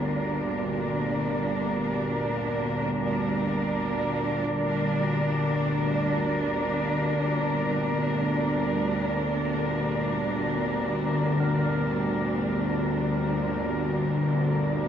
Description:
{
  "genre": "dark ambient drone",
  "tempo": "free time",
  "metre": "none",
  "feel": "none",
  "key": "G minor",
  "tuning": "A4 = 444 Hz",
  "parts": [
    { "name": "rich studio cello section", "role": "sustained chords", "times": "0.0-14.9 s", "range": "Bb2 to Bb4", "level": "-27 LUFS", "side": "right 1 dB", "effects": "none" },
    { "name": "bowed-like drone", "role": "drone", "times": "0.0-14.9 s", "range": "G1 to D2", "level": "-28 LUFS", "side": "left 1 dB", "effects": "built-in reverb" },
    { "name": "bronze singing bowl", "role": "texture", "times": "0.0-14.9 s", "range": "D4 to G4", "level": "-40 LUFS", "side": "right 1 dB", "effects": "none" }
  ],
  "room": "wet huge ambient reverb, RT60 7.5 s",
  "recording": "worn, warbling old tape, cassette tape, warbly pitch drift",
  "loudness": "-24 LUFS",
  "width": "side -9 dB against mid",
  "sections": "0.0-14.9 A section",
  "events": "none",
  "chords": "0.0 Gm"
}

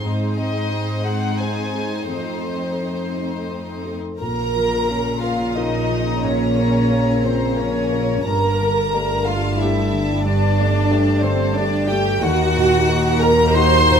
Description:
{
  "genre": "cinematic",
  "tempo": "90 BPM",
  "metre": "3/4",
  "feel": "rubato",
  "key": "unclear",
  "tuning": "A4 = 444 Hz",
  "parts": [
    { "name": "warm symphonic violin section", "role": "melody", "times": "0.0-14.0 s", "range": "C5 to Bb5", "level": "-31 LUFS", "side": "left 5 dB", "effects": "none" },
    { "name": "warm symphonic violin section", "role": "second line", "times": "0.0-14.0 s", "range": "Eb4 to C6", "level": "-27 LUFS", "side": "left 1 dB", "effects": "none" },
    { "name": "dark symphonic viola section", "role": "accompaniment", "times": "0.0-14.0 s", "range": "Ab3 to C5", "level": "-22 LUFS", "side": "right 2 dB", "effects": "none" },
    { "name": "warm baby grand piano", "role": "accompaniment", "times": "0.0-14.0 s", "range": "Eb2 to C5", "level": "-25 LUFS", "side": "left 3 dB", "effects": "none" },
    { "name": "warm studio cello section", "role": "bass", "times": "0.1-14.0 s", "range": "Eb2 to Bb2", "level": "-25 LUFS", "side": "right 2 dB", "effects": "none" },
    { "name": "small flute group", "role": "second line", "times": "4.2-14.0 s", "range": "C5 to C6", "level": "-27 LUFS", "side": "left 3 dB", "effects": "none" },
    { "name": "mellow French horn section", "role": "sustained chords", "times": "4.2-14.0 s", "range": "Db3 to Eb4", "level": "-26 LUFS", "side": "left 4 dB", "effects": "none" },
    { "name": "warm symphonic double bass section", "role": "bass", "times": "4.2-14.0 s", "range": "G1 to Eb2", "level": "-24 LUFS", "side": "right 3 dB", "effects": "none" }
  ],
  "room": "moderate scoring stage reverb, RT60 1.5 s",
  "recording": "close, detailed microphones",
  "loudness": "-17 LUFS",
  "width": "side -7 dB against mid",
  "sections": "0.0-4.2 A section; 4.2-14.0 B section",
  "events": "none",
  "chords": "0.1 Ab; 2.1 F7; 4.2 Bbm; 8.3 Gmadd9; 12.2 Ebm"
}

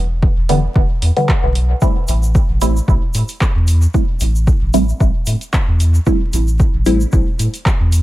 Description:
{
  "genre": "dub techno",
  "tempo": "113 BPM",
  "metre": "4/4",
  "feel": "swing 54% on 16ths",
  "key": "unclear",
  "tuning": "A4 = 440 Hz",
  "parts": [
    { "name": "warm sub bass", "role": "bass", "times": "0.0-8.0 s", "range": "E1 to A2", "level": "-15 LUFS", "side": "equal", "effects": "sidechain pumping" },
    { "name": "electronic kick drum", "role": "drums", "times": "0.2-7.8 s", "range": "none", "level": "-15 LUFS", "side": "equal", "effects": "overdrive" },
    { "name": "filtered dub chord stab", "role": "stabs", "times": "0.5-7.0 s", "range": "D3 to E4", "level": "-19 LUFS", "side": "right 1 dB", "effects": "phaser, sidechain pumping, dub echo" },
    { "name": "deep house drum kit", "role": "drums", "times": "0.5-8.0 s", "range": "handclaps, hi-hat", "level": "-25 LUFS", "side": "right 1 dB", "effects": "overdrive" },
    { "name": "egg shaker", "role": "percussion", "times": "1.8-8.0 s", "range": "none", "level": "-31 LUFS", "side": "left 1 dB", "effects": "none" }
  ],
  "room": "digital ambience",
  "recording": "vinyl crackle",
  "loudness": "-13 LUFS",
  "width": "side -16 dB against mid",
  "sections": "0.0-8.0 A section",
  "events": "none",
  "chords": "0.0 Em7; 1.8 Am7"
}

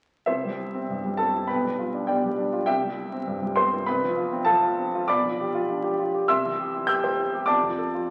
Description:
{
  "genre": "classical, virtuoso piano study",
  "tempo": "100 BPM",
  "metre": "2/4",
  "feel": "rubato",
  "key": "C major",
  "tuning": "A4 = 442 Hz",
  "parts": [
    { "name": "clear grand piano", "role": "solo", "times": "0.3-8.1 s", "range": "B1 to G6", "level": "-25 LUFS", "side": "equal", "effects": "none" }
  ],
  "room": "wet recital hall reverb, RT60 1.4 s",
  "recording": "very old 78 rpm record, vinyl crackle",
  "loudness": "-25 LUFS",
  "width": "mono",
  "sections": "0.3-8.1 A section",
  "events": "none",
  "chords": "0.3 C; 1.5 G7/B; 2.7 C; 3.9 F/C; 5.1 G7/B; 6.3 C; 7.5 F"
}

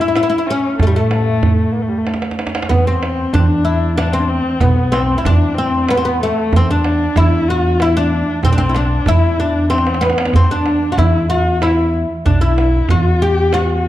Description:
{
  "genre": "Persian modal ensemble",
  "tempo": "94 BPM",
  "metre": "3/4",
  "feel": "straight",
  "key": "E dastgah shur",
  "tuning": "A4 = 441 Hz",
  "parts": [
    { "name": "oud", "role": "melody", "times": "0.0-13.8 s", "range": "G3 to G4", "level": "-17 LUFS", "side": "equal", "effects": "none" },
    { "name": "warm kamancheh", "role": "second line", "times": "0.0-13.9 s", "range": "G3 to G4", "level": "-20 LUFS", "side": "left 3 dB", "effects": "none" },
    { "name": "tombak", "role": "percussion", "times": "0.2-13.9 s", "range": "none", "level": "-18 LUFS", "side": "right 2 dB", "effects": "none" },
    { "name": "upright bass", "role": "bass", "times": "0.8-13.9 s", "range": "B1 to A2", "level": "-18 LUFS", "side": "equal", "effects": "none" }
  ],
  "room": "moderate recital hall reverb, RT60 1.7 s",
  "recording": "dark, warm production",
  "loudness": "-12 LUFS",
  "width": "side -14 dB against mid",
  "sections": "0.0-2.7 A section; 2.7-13.9 B section",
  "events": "drum fill 2.1-2.7, 9.7-10.3",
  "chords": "none"
}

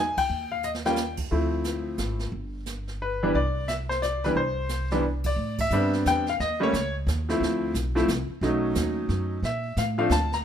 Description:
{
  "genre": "jazz piano trio",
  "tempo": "177 BPM",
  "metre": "3/4",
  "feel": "swing 63% on 8ths",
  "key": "C major",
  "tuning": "A4 = 440 Hz",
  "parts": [
    { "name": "clear baby grand piano", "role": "melody", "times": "0.0-10.4 s", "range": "E3 to Bb5", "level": "-25 LUFS", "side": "left 1 dB", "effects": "none" },
    { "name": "upright bass", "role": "bass", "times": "0.0-10.4 s", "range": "G1 to Bb2", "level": "-29 LUFS", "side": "right 1 dB", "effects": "none" },
    { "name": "jazz brush drum kit", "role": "drums", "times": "0.2-10.4 s", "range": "brushed snare drum, crash cymbal, hi-hat, kick drum, ride cymbal, snare drum", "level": "-35 LUFS", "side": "right 4 dB", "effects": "none" }
  ],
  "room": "light reverb",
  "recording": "minimal, uncompressed stereo recording",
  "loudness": "-24 LUFS",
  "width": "side -9 dB against mid",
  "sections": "0.0-5.4 A section; 5.4-10.4 B section",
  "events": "band accent 0.1, 5.2, 5.5; drum fill 0.6-1.0",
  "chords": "0.3 Ebadd9; 1.3 Dm9; 2.3 G; 3.3 Csus2; 5.4 Am11; 6.4 D#7(b5, no3); 7.4 Dm7; 8.4 B9; 9.4 Bbmaj7"
}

